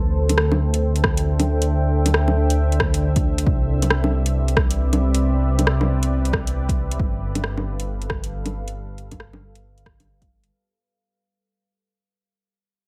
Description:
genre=future garage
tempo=136 BPM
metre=4/4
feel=swing 62% on 16ths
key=unclear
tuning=A4 = 441 Hz
part: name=deep dark ambient pad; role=sustained chords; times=0.0-10.5 s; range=G3 to G5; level=-29 LUFS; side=equal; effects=chorus, built-in reverb, sidechain pumping
part: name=dark detuned saw bass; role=bass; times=0.0-10.5 s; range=G1 to D2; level=-23 LUFS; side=equal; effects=sidechain pumping
part: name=deep house drum kit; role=drums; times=0.3-10.5 s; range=bongos, hi-hat, rim click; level=-25 LUFS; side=equal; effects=overdrive
part: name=electronic kick drum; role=drums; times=1.0-10.3 s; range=none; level=-25 LUFS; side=equal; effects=overdrive
room=light reverb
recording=none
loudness=-20 LUFS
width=mono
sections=0.0-10.5 A section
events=fade-out 5.8-10.5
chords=0.0 D7sus4; 3.5 Cmaj7; 7.0 G7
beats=0.38 0.82 1.26 | 1.70 2.14 2.58 3.02 | 3.46 3.90 4.35 4.79 | 5.23 5.67 6.11 6.55 | 6.99 7.43 7.88 8.32 | 8.76 9.20 9.64 10.08

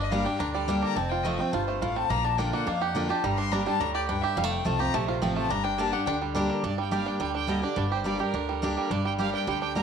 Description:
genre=bluegrass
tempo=212 BPM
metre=4/4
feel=straight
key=G minor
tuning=A4 = 440 Hz
part: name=bluegrass banjo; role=melody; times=0.0-9.8 s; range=D3 to G4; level=-30 LUFS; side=right 9 dB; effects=none
part: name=rich fiddle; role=second line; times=0.0-6.1 s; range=C5 to C6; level=-30 LUFS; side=left 10 dB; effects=none
part: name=picked steel-string acoustic guitar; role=accompaniment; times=0.0-9.8 s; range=F2 to G4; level=-29 LUFS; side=left 1 dB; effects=none
part: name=upright bass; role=bass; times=0.0-9.8 s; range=F1 to F2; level=-34 LUFS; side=left 1 dB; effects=none
part: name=clear fiddle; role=melody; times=6.5-9.8 s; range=Bb4 to Bb5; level=-34 LUFS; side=right 9 dB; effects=none
room=moderate echo chamber reverb, RT60 1.3 s, small room ambience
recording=1960s-style stereo with parts hard left and right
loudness=-25 LUFS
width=side -7 dB against mid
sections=0.0-6.6 A section; 6.6-9.8 B section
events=fiddle solo 0.0-6.6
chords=0.0 Gm; 1.0 F; 2.1 Bb; 3.2 Gm; 4.4 F; 5.5 Gm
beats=0.12 0.40 0.69 | 0.97 1.25 1.53 1.82 | 2.10 2.38 2.67 2.95 | 3.23 3.52 3.80 4.08 | 4.37 4.65 4.93 5.22 | 5.50 5.79 6.07 6.35 | 6.63 6.92 7.20 7.49 | 7.77 8.05 8.34 8.62 | 8.90 9.19 9.47 9.76

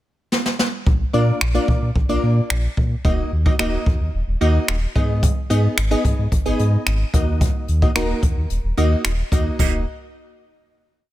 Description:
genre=dance-pop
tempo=110 BPM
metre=4/4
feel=straight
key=Eb harmonic minor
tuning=A4 = 441 Hz
part: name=jazz brush drum kit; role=drums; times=0.3-9.7 s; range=crash cymbal, finger snaps, hi-hat, kick drum, snare drum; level=-20 LUFS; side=equal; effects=none
part: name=sub bass with octave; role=bass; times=0.9-9.8 s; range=Eb1 to Bb2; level=-20 LUFS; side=equal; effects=sidechain pumping
part: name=wavetable chord stab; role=accompaniment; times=1.1-9.8 s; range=Bb3 to Eb5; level=-23 LUFS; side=equal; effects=sidechain pumping
room=little or no reverb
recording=none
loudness=-17 LUFS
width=side -15 dB against mid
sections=0.0-0.9 pickup bar; 0.9-9.6 verse; 9.6-11.1 final chord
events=drum fill 0.3-0.9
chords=0.0 N.C.; 0.9 Bb; 3.0 Ebm; 5.0 Abm; 7.1 Ebm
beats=0.32 | 0.86 1.41 1.96 2.50 | 3.05 3.59 4.14 4.68 | 5.23 5.77 6.32 6.87 | 7.41 7.96 8.50 9.05 | 9.59

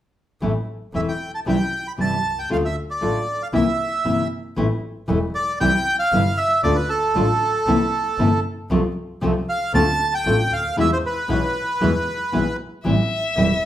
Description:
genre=tango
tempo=116 BPM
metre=4/4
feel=rubato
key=A minor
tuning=A4 = 439 Hz
part: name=nylon-string guitar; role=accompaniment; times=0.4-13.5 s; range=B2 to F4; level=-22 LUFS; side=left 1 dB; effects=none
part: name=clear double bass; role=bass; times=0.4-13.6 s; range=E1 to E2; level=-26 LUFS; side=equal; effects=none
part: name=bandoneon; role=melody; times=1.0-12.6 s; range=A4 to B5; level=-21 LUFS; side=right 1 dB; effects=none
part: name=rich violin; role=second line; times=12.8-13.7 s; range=E5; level=-22 LUFS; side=left 2 dB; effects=none
room=wet large studio reverb, RT60 0.9 s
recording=band playing live in one room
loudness=-18 LUFS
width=side -12 dB against mid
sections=0.4-4.6 A section; 4.6-13.7 B section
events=none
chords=0.4 Am; 1.5 C; 2.5 Dm; 3.5 C7; 4.6 Am; 5.6 C; 6.6 Dm; 7.7 C7; 8.7 F/C; 9.7 Dm7; 10.8 E; 12.9 Am7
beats=| 0.42 0.94 1.46 1.98 | 2.49 3.01 3.53 4.05 | 4.57 5.09 5.60 6.12 | 6.64 7.15 7.67 8.19 | 8.70 9.22 9.74 10.25 | 10.77 11.29 11.81 12.33 | 12.85 13.37

